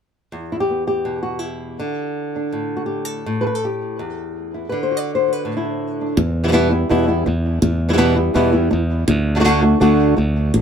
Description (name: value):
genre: flamenco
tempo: free time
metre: none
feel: none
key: E minor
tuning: A4 = 441 Hz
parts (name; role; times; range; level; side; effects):
- flamenco guitar; melody; 0.3-10.6 s; E2 to D5; -18 LUFS; equal; tape echo
- modern bright fingered electric bass; bass; 6.2-10.6 s; A1 to E2; -18 LUFS; equal; none
room: light reverb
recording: none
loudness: -16 LUFS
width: side -7 dB against mid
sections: 0.3-6.2 A section; 6.2-10.6 B section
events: none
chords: 0.3 Em; 1.8 D5; 3.3 A5; 4.7 D; 6.2 Em; 9.1 D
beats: free time